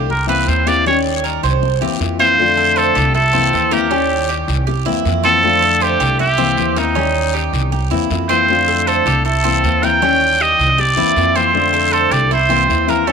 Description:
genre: latin, Cuban son and guajira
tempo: 157 BPM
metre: 4/4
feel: straight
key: unclear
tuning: A4 = 441 Hz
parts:
  - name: nylon-string guitar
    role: accompaniment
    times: 0.0-13.1 s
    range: D3 to G4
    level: -20 LUFS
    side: left 14 dB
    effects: none
  - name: Cuban tres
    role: arpeggios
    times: 0.0-13.1 s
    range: C4 to C5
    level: -20 LUFS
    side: right 15 dB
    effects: none
  - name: upright bass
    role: bass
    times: 0.0-13.1 s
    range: C2 to F2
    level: -20 LUFS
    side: right 1 dB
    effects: none
  - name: trumpet with straight mute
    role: melody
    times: 0.1-13.1 s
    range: Eb4 to G5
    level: -15 LUFS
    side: right 1 dB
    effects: tape echo
  - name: guiro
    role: percussion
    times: 0.1-13.1 s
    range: none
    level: -29 LUFS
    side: left 14 dB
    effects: none
room: light reverb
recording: 1960s-style stereo with parts hard left and right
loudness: -12 LUFS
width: side -6 dB against mid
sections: 0.0-2.4 A section; 2.4-13.1 B section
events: muted trumpet solo 0.0-2.4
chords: 0.1 C7; 0.9 Eb7; 1.6 C7; 2.4 F6; 3.1 C7; 3.9 Eb7; 4.7 C7; 5.4 F6; 6.2 C7; 7.0 Eb7; 7.7 C7; 8.5 F6; 9.3 C7; 10.0 Eb7; 10.8 C7; 11.5 F6; 12.3 C7

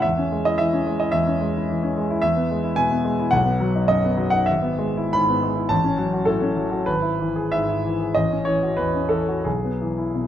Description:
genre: classical, romantic character piece for solo piano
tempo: 85-113 BPM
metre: 4/4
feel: rubato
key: E major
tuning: A4 = 443 Hz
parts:
  - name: clear grand piano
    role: solo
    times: 0.0-10.3 s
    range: G#1 to B5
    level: -19 LUFS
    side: equal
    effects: none
room: moderate recital hall reverb, RT60 1.3 s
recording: close, detailed microphones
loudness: -19 LUFS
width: side -10 dB against mid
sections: 0.0-10.3 A section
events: none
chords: 0.0 C#m/E; 2.2 E; 3.3 B; 4.5 E/G#; 5.7 F#m/A; 6.9 E/G#; 8.2 F#m7/A; 9.5 E/B

